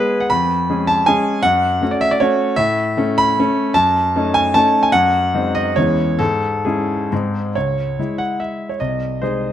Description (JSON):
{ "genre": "classical, romantic triple-time dance for piano with dotted rhythms", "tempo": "126-172 BPM", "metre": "3/4", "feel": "rubato", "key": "C# minor", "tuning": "A4 = 436 Hz", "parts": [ { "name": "clear grand piano", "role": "solo", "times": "0.0-9.5 s", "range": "B#1 to B5", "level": "-15 LUFS", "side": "equal", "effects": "none" } ], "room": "moderate recital hall reverb, RT60 1.4 s", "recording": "close, detailed microphones", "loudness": "-15 LUFS", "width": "side -10 dB against mid", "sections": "0.0-7.6 A section; 7.6-9.5 B section", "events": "none", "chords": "0.3 C#7/E#; 1.4 F#m; 2.6 A; 3.8 D#m7b5/F#; 4.9 G#7/F#; 5.8 C#m/E; 6.2 C#m/G#; 7.1 G#; 7.6 C#m; 8.8 G#/B#", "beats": "| 0.31 0.70 1.08 | 1.44 1.82 2.20 | 2.57 2.96 3.39 | 3.76 4.16 4.55 | 4.93 5.33 5.77 | 6.20 6.65 7.12 | 7.56 7.98 8.41 | 8.81 9.23" }